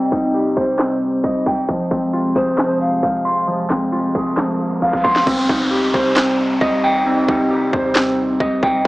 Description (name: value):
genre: hip hop, trap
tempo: 134 BPM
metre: 4/4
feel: half-time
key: C minor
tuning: A4 = 441 Hz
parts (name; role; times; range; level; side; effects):
- warm analog pad; sustained chords; 0.0-8.9 s; F2 to Eb4; -26 LUFS; right 1 dB; chorus
- mellow electric guitar; arpeggios; 0.0-8.9 s; F3 to C6; -16 LUFS; equal; digital delay
- trap drum kit; drums; 0.0-8.9 s; crash cymbal, handclaps, hi-hat, kick drum, snare drum; -21 LUFS; equal; none
- riser and downlifter; sound effects; 3.9-8.9 s; none; -27 LUFS; equal; none
- breathy polished pan flute; second line; 2.4-3.0 s; C5 to F5; -24 LUFS; left 1 dB; digital delay
- clean 808-style bass; bass; 5.3-8.9 s; C2 to Eb2; -34 LUFS; equal; none
room: moderate scoring stage reverb, RT60 2.1 s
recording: low-pass filter, small speaker sound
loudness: -15 LUFS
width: side -19 dB against mid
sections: 0.0-5.3 A section; 5.3-8.9 B section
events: filter sweep 0.0-5.3; riser 3.9-5.3; drum fill 4.8-5.3; hi-hats muted 5.3-8.9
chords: 0.0 Cm; 1.7 Fm; 5.3 Cm